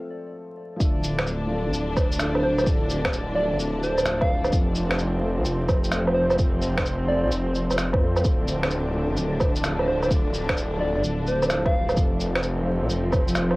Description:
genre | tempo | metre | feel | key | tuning
future garage | 129 BPM | 4/4 | swing 66% on 16ths | D minor | A4 = 440 Hz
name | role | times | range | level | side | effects
felt-muted upright piano | accompaniment | 0.0-13.6 s | F3 to A4 | -32 LUFS | left 1 dB | vintage 12-bit sampler grit, sidechain pumping, cassette tape, analog delay
rich studio string section | sustained chords | 0.8-13.6 s | D3 to D4 | -29 LUFS | equal | sidechain pumping, cassette tape
swelling detuned saw bass | bass | 0.8-13.6 s | D1 to F2 | -27 LUFS | equal | sidechain pumping
electronic kick drum | drums | 0.8-13.3 s | none | -24 LUFS | equal | overdrive, cassette tape
electronic shaker, finger snaps and woodblock | drums | 0.8-13.6 s | none | -26 LUFS | right 1 dB | low-pass filter on perc, cassette tape, low-pass filter on snare, low-pass filter on room
soft struck synth lead | melody | 2.4-12.0 s | C5 to F5 | -27 LUFS | equal | chorus, vintage 12-bit sampler grit, cassette tape, analog delay
room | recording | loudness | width
light reverb | home recording on cassette, vinyl crackle | -21 LUFS | side -21 dB against mid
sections
0.8-13.6 A section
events
break 0.0-0.8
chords
0.0 F; 0.8 Dm; 4.5 F; 8.2 Dm; 12.0 F

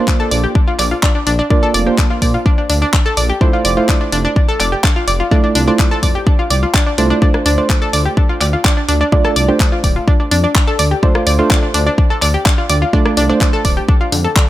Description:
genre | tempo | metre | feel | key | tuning
progressive house | 126 BPM | 4/4 | straight | D minor | A4 = 439 Hz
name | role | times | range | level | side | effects
deep mellow chord stab | stabs | 0.0-14.5 s | A3 to D5 | -19 LUFS | right 4 dB | chorus, sidechain pumping, dub echo
analog pluck | arpeggios | 0.1-14.4 s | D3 to D5 | -17 LUFS | equal | chorus, sidechain pumping, dub echo
electronic kick drum | drums | 0.1-14.5 s | none | -13 LUFS | equal | none
pop drum kit | drums | 0.1-14.5 s | handclaps, hi-hat, rim click | -19 LUFS | left 1 dB | none
dark detuned saw bass | bass | 0.3-14.3 s | D1 to Bb2 | -16 LUFS | equal | sidechain pumping
room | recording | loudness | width
light reverb, digital ambience | none | -11 LUFS | side -14 dB against mid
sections
0.0-14.5 A section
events
none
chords
0.0 Bbadd9; 3.4 Fmaj7; 7.2 Dm7

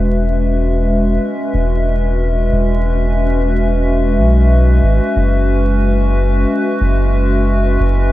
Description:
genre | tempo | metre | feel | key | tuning
ambient dub | 91 BPM | 4/4 | swing 58% on 16ths | unclear | A4 = 441 Hz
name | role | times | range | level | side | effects
warbly tape-like pad | sustained chords | 0.0-8.1 s | G#3 to E5 | -16 LUFS | left 1 dB | chorus, built-in reverb
soft dub sub bass | bass | 0.0-8.1 s | E1 to B1 | -14 LUFS | equal | none
room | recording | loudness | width
light reverb | vinyl crackle | -12 LUFS | side -15 dB against mid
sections
0.0-8.1 A section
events
none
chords
0.0 E; 5.2 F#7sus2

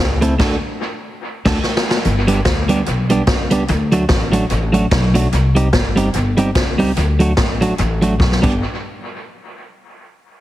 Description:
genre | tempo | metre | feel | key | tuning
ska | 146 BPM | 4/4 | swing 57% on 8ths | G major | A4 = 439 Hz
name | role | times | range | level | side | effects
clean electric guitar | accompaniment | 0.0-8.5 s | F#3 to A4 | -18 LUFS | right 2 dB | none
upright bass | bass | 0.0-8.6 s | G1 to D2 | -18 LUFS | left 1 dB | none
swinging big-band drum kit | drums | 0.2-8.5 s | crash cymbal, hi-hat, kick drum, snare drum | -19 LUFS | equal | dub echo
room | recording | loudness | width
light reverb, studio ambience | heavily compressed radio sound, multiband compression | -14 LUFS | side -14 dB against mid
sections
0.0-2.0 A section; 2.0-8.6 B section; 8.6-10.2 C section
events
band accent 0.4-2.0; drum fill 1.2-2.0, 8.2-8.6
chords
0.4 D; 2.0 G; 3.7 D; 5.3 Cm; 7.0 D; 8.4 G; 8.6 N.C.

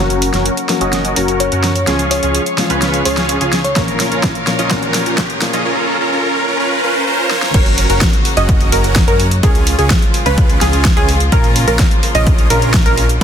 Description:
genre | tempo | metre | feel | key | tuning
EDM, festival progressive house | 127 BPM | 4/4 | straight | F# major | A4 = 440 Hz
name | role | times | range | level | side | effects
dark concert grand piano | accompaniment | 0.0-5.7 s | A#2 to F#4 | -21 LUFS | left 5 dB | sidechain pumping, digital delay
rich chamber string section | sustained chords | 0.0-13.2 s | C#3 to C#6 | -24 LUFS | left 1 dB | sidechain pumping, low-pass filter
dense compressed supersaw | riff | 0.0-13.2 s | C#4 to D#5 | -18 LUFS | right 1 dB | sidechain pumping, low-pass filter, digital delay
fat analog bass | bass | 0.0-13.2 s | F#1 to F#2 | -18 LUFS | equal | sidechain pumping
riser | sound effects | 2.5-7.5 s | none | -23 LUFS | equal | none
big-room dance drum kit | drums | 0.1-13.2 s | crash cymbal, hi-hat, snare drum | -19 LUFS | equal | overdrive
bell-like FM electric piano | melody | 1.4-3.8 s | C#5 | -23 LUFS | left 1 dB | chorus, phaser, digital delay
electronic kick drum | drums | 3.8-13.2 s | none | -14 LUFS | equal | overdrive
wide unison pluck | arpeggios | 7.5-13.2 s | G#4 to D#5 | -19 LUFS | right 1 dB | sidechain pumping, digital delay
room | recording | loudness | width
light reverb | dense, heavily limited modern master, high-pass filter | -11 LUFS | side -8 dB against mid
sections
0.0-7.5 A section; 7.5-13.2 B section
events
build-up 0.0-7.5; drum fill 0.0-5.7, 7.3; filter sweep on supersaw synth 0.0-7.5; filter sweep on string section 0.0-7.5; filter sweep 0.0-7.5; riser 2.5-7.5; drop 7.5-13.2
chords
0.0 F#; 1.9 C#; 3.8 A#m; 5.7 C#6; 7.5 F#; 9.4 C#; 11.3 A#m

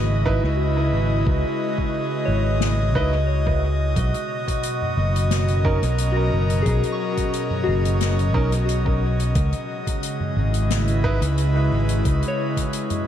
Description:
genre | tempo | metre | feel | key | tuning
ambient dub | 89 BPM | 4/4 | straight | C# dorian | A4 = 440 Hz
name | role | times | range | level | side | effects
airy breathy pad | sustained chords | 0.0-13.1 s | B2 to D#5 | -25 LUFS | equal | chorus
soft synth bell | arpeggios | 0.0-13.1 s | F#4 to C#6 | -31 LUFS | left 4 dB | chorus, low-pass filter, tape echo
fingered electric bass | bass | 0.0-12.2 s | F#1 to C#2 | -20 LUFS | equal | none
drifting glass-harmonics texture | texture | 0.0-13.1 s | F#4 | -32 LUFS | right 2 dB | chorus, built-in reverb
bright upright piano | stabs | 0.3-11.2 s | C#4 to B4 | -31 LUFS | right 4 dB | dub echo
electronic kick drum | drums | 0.3-12.7 s | none | -25 LUFS | equal | none
soft-mallet drum kit | drums | 2.6-13.0 s | hi-hat, snare drum, toms | -30 LUFS | left 3 dB | dub echo
room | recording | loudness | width
light reverb, small room ambience | none | -19 LUFS | side -10 dB against mid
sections
0.0-13.1 A section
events
none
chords
0.0 C#m7; 4.0 Bmaj7; 9.4 C#m7

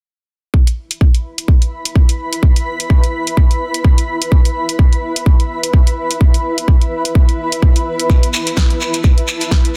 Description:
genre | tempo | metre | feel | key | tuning
bass house | 127 BPM | 4/4 | swing 57% on 16ths | unclear | A4 = 440 Hz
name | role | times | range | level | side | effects
electronic kick drum | drums | 0.5-9.6 s | none | -13 LUFS | equal | none
granular cloud pad | texture | 1.4-9.8 s | E4 to B5 | -23 LUFS | equal | built-in reverb, sidechain pumping
house drum kit | drums | 0.7-9.7 s | hi-hat, snare drum | -23 LUFS | equal | none
shekere | percussion | 8.1-9.6 s | none | -24 LUFS | equal | none
room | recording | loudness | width
digital ambience | dense, heavily limited modern master | -14 LUFS | mono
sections
0.5-9.8 A section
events
none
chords
0.5 E5

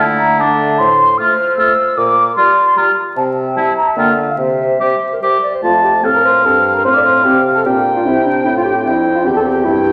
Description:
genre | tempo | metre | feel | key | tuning
quick classical-period movement for wind quintet | 151 BPM | 3/4 | straight | F major | A4 = 438 Hz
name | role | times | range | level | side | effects
mellow hollow concert flute | melody | 0.0-9.7 s | D5 to F6 | -18 LUFS | equal | none
warm oboe | second line | 0.0-9.9 s | D4 to A5 | -17 LUFS | equal | none
mellow clarinet | accompaniment | 0.0-9.9 s | D4 to E5 | -21 LUFS | equal | none
warm French horn | accompaniment | 0.0-9.9 s | G3 to D4 | -24 LUFS | equal | none
warm bassoon | bass | 0.0-9.9 s | E2 to D3 | -22 LUFS | equal | none
room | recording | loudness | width
wet recital hall reverb, RT60 1.5 s | vinyl crackle | -13 LUFS | mono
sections
0.0-5.6 A section; 5.6-9.9 B section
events
none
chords
0.0 D5; 0.8 F/A; 2.0 Gm7/Bb; 3.2 C; 4.0 Bb/D; 4.4 C; 5.6 F; 6.8 F/A; 8.1 C5; 9.3 C/E

